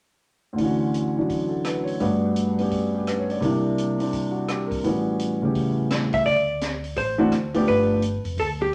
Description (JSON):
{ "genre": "jazz, small-group swing and bop", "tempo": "169 BPM", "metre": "4/4", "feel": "swing 63% on 8ths", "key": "D major", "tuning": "A4 = 440 Hz", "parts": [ { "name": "dark upright piano", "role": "accompaniment", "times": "0.5-8.0 s", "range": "D2 to D5", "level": "-24 LUFS", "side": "equal", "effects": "none" }, { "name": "open jazz drum kit", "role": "drums", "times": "0.6-8.5 s", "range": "hi-hat, kick drum, rim click, snare drum", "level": "-36 LUFS", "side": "equal", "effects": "none" }, { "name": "vintage hollow-body jazz guitar", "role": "melody", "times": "6.1-8.7 s", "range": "G4 to E5", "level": "-26 LUFS", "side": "equal", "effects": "none" }, { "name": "upright bass", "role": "bass", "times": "6.3-8.7 s", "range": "F1 to D2", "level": "-33 LUFS", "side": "equal", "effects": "none" } ], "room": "wet studio reverb, RT60 0.9 s", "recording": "none", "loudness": "-24 LUFS", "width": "mono", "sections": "0.6-6.3 A section; 6.3-8.7 B section", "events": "none", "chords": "0.6 Dmaj9; 2.0 Gmaj7; 3.4 C9; 4.8 A13; 6.3 D7(no3); 7.7 G9" }